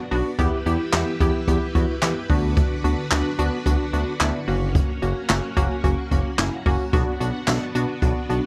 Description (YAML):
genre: synth-pop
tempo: 110 BPM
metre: 4/4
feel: straight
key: B harmonic minor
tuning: A4 = 440 Hz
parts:
  - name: funky polysynth comp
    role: accompaniment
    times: 0.0-8.5 s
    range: A#3 to G4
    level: -28 LUFS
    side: equal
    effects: chorus, plate reverb
  - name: string machine, full ensemble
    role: sustained chords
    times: 0.0-8.5 s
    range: D3 to B4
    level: -33 LUFS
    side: equal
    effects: ensemble chorus, plate reverb
  - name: smooth synth bass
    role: bass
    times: 0.1-8.4 s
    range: F#1 to E2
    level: -27 LUFS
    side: equal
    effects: none
  - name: jazz brush drum kit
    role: drums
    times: 0.1-8.4 s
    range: handclaps, hi-hat, kick drum, snare drum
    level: -25 LUFS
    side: equal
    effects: none
room: light reverb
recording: none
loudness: -22 LUFS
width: mono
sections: 0.0-8.5 A section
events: none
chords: 0.4 Em; 2.3 Bm/D; 4.5 F#; 6.9 Bm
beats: | 0.39 0.93 1.48 2.02 | 2.57 3.11 3.66 4.20 | 4.75 5.29 5.84 6.39 | 6.93 7.48 8.02